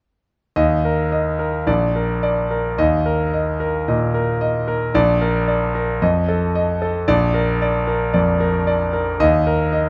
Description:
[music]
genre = classical, virtuoso piano study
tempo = 112 BPM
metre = 4/4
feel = rubato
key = unclear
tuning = A4 = 440 Hz
[part]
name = clear grand piano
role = solo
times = 0.6-9.9 s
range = Bb1 to Eb5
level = -19 LUFS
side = equal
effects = none
[sound]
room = light reverb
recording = close, detailed microphones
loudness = -19 LUFS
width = mono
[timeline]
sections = 0.6-9.9 A section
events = none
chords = 0.6 Eb5; 1.7 Bb; 2.8 Eb5; 4.9 Bb; 6.0 F7; 7.1 Bb; 9.2 Eb5

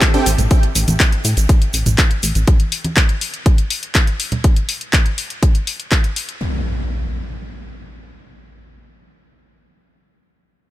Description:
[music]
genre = progressive house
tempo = 122 BPM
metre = 4/4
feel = straight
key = A minor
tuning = A4 = 440 Hz
[part]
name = analog pluck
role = arpeggios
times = 0.0-0.5 s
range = A3 to D4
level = -28 LUFS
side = right 4 dB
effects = none
[part]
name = electronic kick drum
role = drums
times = 0.0-6.0 s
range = none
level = -14 LUFS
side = equal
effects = none
[part]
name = house drum kit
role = drums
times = 0.0-6.4 s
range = handclaps, hi-hat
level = -20 LUFS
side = left 2 dB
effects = none
[part]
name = egg shaker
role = percussion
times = 0.0-2.5 s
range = none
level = -24 LUFS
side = right 7 dB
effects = none
[part]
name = downlifter and impact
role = sound effects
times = 0.1-2.5, 6.4-9.7 s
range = none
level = -27 LUFS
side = equal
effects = none
[part]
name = plucky analog bass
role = bass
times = 0.3-2.5 s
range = A1 to A2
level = -16 LUFS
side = equal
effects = sidechain pumping
[part]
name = congas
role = percussion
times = 0.4-4.4 s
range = none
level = -23 LUFS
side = right 2 dB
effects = sidechain pumping on perc
[sound]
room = digital ambience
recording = none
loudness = -14 LUFS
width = side -15 dB against mid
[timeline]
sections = 0.0-6.4 A section; 6.4-10.3 B section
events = none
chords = 0.0 Am7; 2.5 N.C.

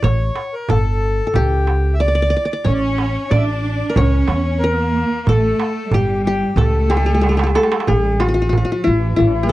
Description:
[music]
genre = Arabic maqam ensemble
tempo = 92 BPM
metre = 4/4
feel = straight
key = A maqam hijaz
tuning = A4 = 440 Hz
[part]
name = qanun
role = melody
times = 0.0-9.5 s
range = E4 to D5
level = -20 LUFS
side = left 1 dB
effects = none
[part]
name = accordion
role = second line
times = 0.0-9.5 s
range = D4-40c to E5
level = -24 LUFS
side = left 3 dB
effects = none
[part]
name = upright bass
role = bass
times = 0.0-9.5 s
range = G1 to E2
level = -18 LUFS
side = equal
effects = none
[part]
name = darbuka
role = percussion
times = 0.0-9.4 s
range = none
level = -21 LUFS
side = right 3 dB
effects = none
[part]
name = clear studio cello section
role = second line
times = 2.7-9.5 s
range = E3+40c to D4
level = -23 LUFS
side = right 2 dB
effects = none
[sound]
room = light reverb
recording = dry, close 1970s-style studio recording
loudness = -15 LUFS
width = side -16 dB against mid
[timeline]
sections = 0.0-7.9 A section; 7.9-9.5 B section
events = drum fill 7.2-7.9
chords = none

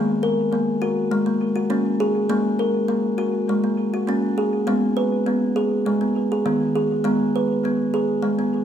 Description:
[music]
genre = world meditative, meditative tuned percussion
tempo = 101 BPM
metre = 4/4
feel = straight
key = unclear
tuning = A4 = 440 Hz
[part]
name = kalimba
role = solo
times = 0.0-8.6 s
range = D#3 to B4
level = -19 LUFS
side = equal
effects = tape echo
[sound]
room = wet recital hall reverb, RT60 1.3 s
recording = none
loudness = -19 LUFS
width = side -9 dB against mid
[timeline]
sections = 0.0-8.6 A section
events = none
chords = 0.0 F#/G#; 4.7 G#m

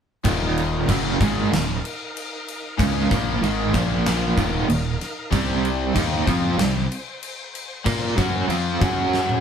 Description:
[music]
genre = hard rock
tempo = 95 BPM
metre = 4/4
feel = straight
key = Eb dorian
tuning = A4 = 440 Hz
[part]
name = cranked stack guitar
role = riff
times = 0.2-9.4 s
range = Eb2 to Bb4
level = -25 LUFS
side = left 4 dB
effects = overdrive
[part]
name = crunchy overdriven guitar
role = riff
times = 0.2-9.4 s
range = Eb2 to Bb4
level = -24 LUFS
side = right 5 dB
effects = tremolo
[part]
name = fuzz fingered electric bass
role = bass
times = 0.2-9.4 s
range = Eb1 to Bb2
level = -27 LUFS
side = left 1 dB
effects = overdrive
[part]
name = gated 80s drum kit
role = drums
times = 0.2-9.4 s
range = crash cymbal, kick drum, snare drum, toms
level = -25 LUFS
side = left 1 dB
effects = none
[part]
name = overdriven tonewheel organ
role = sustained chords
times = 0.3-9.4 s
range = Gb3 to F5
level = -36 LUFS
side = equal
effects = slow rotary speaker, chorus vibrato
[sound]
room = moderate studio ambience, RT60 0.5 s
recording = band playing live in one room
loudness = -19 LUFS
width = side -8 dB against mid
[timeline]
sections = 0.2-9.4 A section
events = drum fill 9.1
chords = 0.2 Ebm; 3.7 Bb5; 4.4 Eb5; 5.3 C5; 8.8 Gb5

